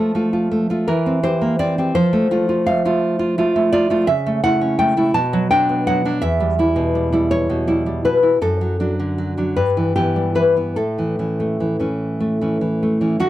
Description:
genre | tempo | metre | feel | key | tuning
romantic piece for solo classical guitar | 48-57 BPM (dotted quarters) | 6/8 | rubato | unclear | A4 = 441 Hz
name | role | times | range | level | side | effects
nylon-string guitar | solo | 0.0-13.3 s | E2 to A5 | -16 LUFS | equal | none
room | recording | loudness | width
little or no reverb | dry, close 1970s-style studio recording | -16 LUFS | side -14 dB against mid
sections
0.0-13.2 A section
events
none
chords
0.0 F; 0.9 C7/E; 2.0 F; 4.1 A/C#; 5.2 Bm; 6.2 Em; 8.4 D/F#; 9.6 Em/G; 10.8 A

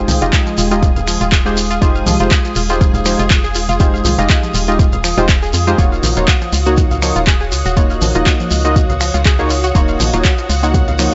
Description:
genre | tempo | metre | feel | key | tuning
deep house | 121 BPM | 4/4 | swing 55% on 16ths | F phrygian | A4 = 440 Hz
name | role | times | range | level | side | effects
airy breathy pad | sustained chords | 0.0-11.1 s | Ab3 to Eb6 | -26 LUFS | equal | chorus, vintage 12-bit sampler grit, sidechain pumping
warm analog keys | stabs | 0.0-11.1 s | Ab3 to Eb5 | -22 LUFS | equal | chorus, sidechain pumping, digital delay
organ-like FM bass | bass | 0.0-11.1 s | Eb1 to F2 | -20 LUFS | equal | tube saturation, sidechain pumping
string machine, violins | texture | 0.0-11.1 s | Gb4 to Ab4 | -31 LUFS | equal | ensemble chorus, sidechain pumping
analog pluck | arpeggios | 0.1-11.0 s | F3 to F5 | -24 LUFS | equal | chorus, phaser, sidechain pumping, tape echo
deep house drum kit | drums | 0.1-11.1 s | finger snaps, handclaps, hi-hat | -22 LUFS | equal | none
congas | percussion | 0.1-11.0 s | none | -27 LUFS | equal | none
shekere | percussion | 0.1-11.1 s | none | -27 LUFS | equal | none
electronic kick drum | drums | 0.3-10.9 s | none | -16 LUFS | equal | none
room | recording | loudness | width
digital ambience | nothing above 7.9 kHz | -14 LUFS | mono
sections
0.0-11.1 A section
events
none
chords
0.0 Fm9; 5.8 Ebm9

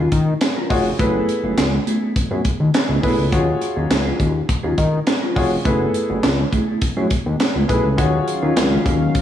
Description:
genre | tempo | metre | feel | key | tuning
early-eighties boogie funk | 103 BPM | 4/4 | straight | Eb minor | A4 = 439 Hz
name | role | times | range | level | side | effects
mellow electric guitar | riff | 0.0-9.2 s | Gb3 to Bb4 | -25 LUFS | right 1 dB | wide subtle chorus, slapback echo
fat analog bass | bass | 0.0-9.1 s | F1 to Eb3 | -19 LUFS | left 1 dB | none
tight funk drum kit | drums | 0.1-9.2 s | handclaps, hi-hat, kick drum, snare drum | -20 LUFS | equal | none
clear concert grand piano | accompaniment | 0.7-8.5 s | Fb4 to Db5 | -21 LUFS | left 1 dB | slapback echo
warm analog pad | sustained chords | 8.0-9.2 s | Eb3 to F5 | -22 LUFS | left 3 dB | chorus
room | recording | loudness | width
moderate scoring stage reverb, RT60 1.6 s, small room ambience | big arena sound, studio ambience | -16 LUFS | side -10 dB against mid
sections
0.0-9.2 A section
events
none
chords
0.0 Ebm11; 1.0 Gbm11; 3.3 Ebm11; 5.7 Gbm11; 8.0 Ebm11

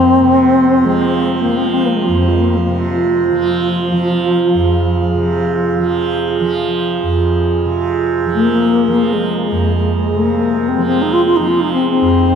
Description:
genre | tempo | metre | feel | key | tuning
world meditative, free-time meditation music | free time | none | none | F minor pentatonic | A4 = 440 Hz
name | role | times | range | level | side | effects
mellow bass flute | melody | 0.0-12.4 s | F3 to F4 | -14 LUFS | left 1 dB | shimmer reverb
tanpura | drone | 0.0-12.4 s | F2 to F3 | -18 LUFS | right 2 dB | stereo widening
glass harmonica | texture | 0.7-12.3 s | F4 to Ab4 | -19 LUFS | right 5 dB | shimmer reverb
room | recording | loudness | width
wet cathedral reverb, RT60 6.8 s | in a vast, echoing space | -12 LUFS | side -7 dB against mid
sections
0.0-12.4 A section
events
none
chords
none

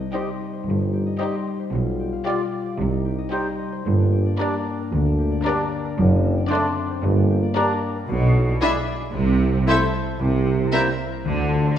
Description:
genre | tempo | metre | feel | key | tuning
cinematic, playful, whimsical film cue | 113 BPM | 4/4 | straight | A minor from 8.1 s | A4 = 440 Hz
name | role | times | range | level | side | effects
dark French horn section | sustained chords | 0.0-10.9 s | G3 to F4 | -30 LUFS | left 5 dB | none
concert harp | arpeggios | 0.0-11.8 s | F#2 to D6 | -29 LUFS | left 6 dB | none
warm tuba | bass | 0.0-11.7 s | F#1 to D2 | -27 LUFS | right 2 dB | none
rich chamber violin section | melody | 0.1-10.8 s | C5 to E5 | -31 LUFS | left 3 dB | none
clear clarinet | second line | 0.1-10.9 s | D4 to G4 | -30 LUFS | left 2 dB | none
mellow hollow silver concert flute | second line | 0.1-10.8 s | G5 to C6 | -31 LUFS | left 3 dB | none
mellow oboe | second line | 0.1-10.9 s | C5 to Eb5 | -31 LUFS | right 1 dB | none
rich studio violin section | second line | 0.1-10.8 s | G4 to C5 | -34 LUFS | left 4 dB | none
mellow bassoon | accompaniment | 0.1-10.9 s | G3 to A3 | -32 LUFS | right 1 dB | none
warm studio viola section | accompaniment | 0.1-10.8 s | C4 to F4 | -31 LUFS | right 2 dB | none
rich studio cello section | bass | 0.7-11.7 s | D2 to D3 | -24 LUFS | right 2 dB | none
warm studio double bass section | bass | 0.7-11.7 s | F#1 to D2 | -24 LUFS | right 2 dB | none
room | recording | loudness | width
moderate scoring stage reverb, RT60 1.6 s | none | -19 LUFS | side -10 dB against mid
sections
0.0-11.8 A section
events
none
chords
0.0 Cm; 1.7 G7/B; 2.8 Cm; 3.9 Gm; 6.0 D7/F#; 7.0 Gm; 8.1 E7/B; 9.1 Am/C; 10.2 C7; 11.3 Dm7

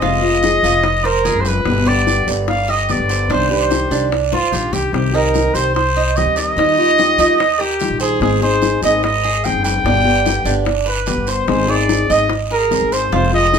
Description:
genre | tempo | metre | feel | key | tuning
latin, Cuban son and guajira | 146 BPM | 4/4 | straight | C minor | A4 = 438 Hz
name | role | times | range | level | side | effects
mellow trumpet | melody | 0.0-13.6 s | F4 to G5 | -17 LUFS | equal | none
fingerpicked steel-string acoustic guitar | accompaniment | 0.0-13.6 s | B2 to Ab4 | -20 LUFS | left 4 dB | none
Cuban tres | arpeggios | 0.0-13.6 s | D4 to Eb5 | -21 LUFS | right 6 dB | none
upright bass | bass | 0.0-13.6 s | F1 to Eb2 | -21 LUFS | equal | none
bongos | percussion | 0.0-13.6 s | none | -24 LUFS | left 6 dB | none
guiro | percussion | 0.0-13.6 s | none | -28 LUFS | right 5 dB | none
room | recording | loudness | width
moderate studio reverb, RT60 0.7 s | minimal, uncompressed stereo recording | -13 LUFS | side -7 dB against mid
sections
0.0-4.9 A section; 4.9-13.6 A section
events
drum fill 4.3-4.9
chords
0.0 Fm; 1.7 G; 3.3 Cmadd9; 4.9 Cm; 6.6 Ebadd9; 8.2 Ab; 9.9 G; 11.5 Ab

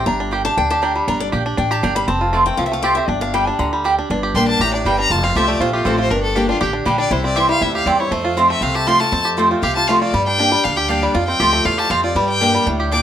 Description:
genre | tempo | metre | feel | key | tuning
bluegrass | 238 BPM | 4/4 | straight | G dorian | A4 = 440 Hz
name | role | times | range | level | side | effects
picked acoustic archtop guitar | accompaniment | 0.0-13.0 s | E2 to B5 | -21 LUFS | left 3 dB | none
bluegrass banjo | arpeggios | 0.0-13.0 s | D3 to G4 | -21 LUFS | right 2 dB | none
upright bass | bass | 0.0-13.0 s | F1 to G2 | -23 LUFS | equal | none
mandolin | stabs | 0.3-13.0 s | Bb3 to A5 | -19 LUFS | right 3 dB | none
clear fiddle | melody | 4.4-13.0 s | F4 to D6 | -19 LUFS | left 2 dB | plate reverb
room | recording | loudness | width
moderate studio reverb, RT60 0.8 s | none | -15 LUFS | side -10 dB against mid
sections
0.0-4.1 A section; 4.1-13.0 A section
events
steel-string acoustic guitar solo 0.0-4.1; fiddle solo 4.1-13.0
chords
0.1 Gm; 2.1 F; 3.1 Gm; 5.1 F; 6.1 Gm; 7.1 C; 8.1 F; 10.1 Gm; 11.1 F; 12.2 Gm

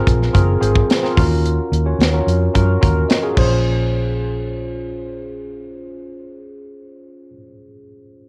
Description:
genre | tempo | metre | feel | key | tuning
polished 1980s jazz-funk pop | 109 BPM | 4/4 | straight | Bb minor | A4 = 440 Hz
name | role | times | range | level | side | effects
tine electric piano | accompaniment | 0.0-8.3 s | C4 to Eb5 | -24 LUFS | equal | analog chorus
vintage muted fingered electric bass | bass | 0.1-7.3 s | Gb1 to Gb2 | -20 LUFS | equal | none
crisp fusion drum kit | drums | 0.1-3.5 s | crash cymbal, hi-hat, kick drum, snare drum | -20 LUFS | equal | cassette tape
room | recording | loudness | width
small room ambience | home recording on cassette | -17 LUFS | mono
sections
0.0-3.6 A section; 3.6-5.8 B section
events
tine electric piano fill 2.8-3.6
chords
0.0 Gbmaj9#11; 1.2 Ebm7; 3.4 Bbm9

